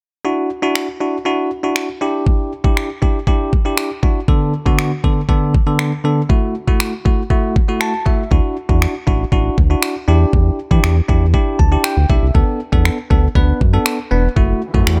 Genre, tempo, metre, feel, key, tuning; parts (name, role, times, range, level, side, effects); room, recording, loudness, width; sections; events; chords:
dance-pop; 119 BPM; 4/4; straight; E minor; A4 = 440 Hz
bell-like tine electric piano; accompaniment; 0.2-15.0 s; D3 to A5; -21 LUFS; equal; sidechain pumping
smooth R&B drum kit; drums; 0.8-15.0 s; finger snaps, kick drum; -18 LUFS; equal
round analog bass; bass; 8.3-15.0 s; E1 to E3; -17 LUFS; equal; sidechain pumping
riser; sound effects; 14.7-15.0 s; -34 LUFS; equal
digital ambience; -16 LUFS; mono
0.2-15.0 A section
tine electric piano fill 7.6-8.3, 11.3-12.3; riser 14.7-15.0
0.2 Dadd9; 2.0 Em7; 4.3 Bm7/D; 6.3 F#m7/A; 8.3 Dadd9; 10.1 Em7; 12.3 Bm7/D; 14.4 F#m7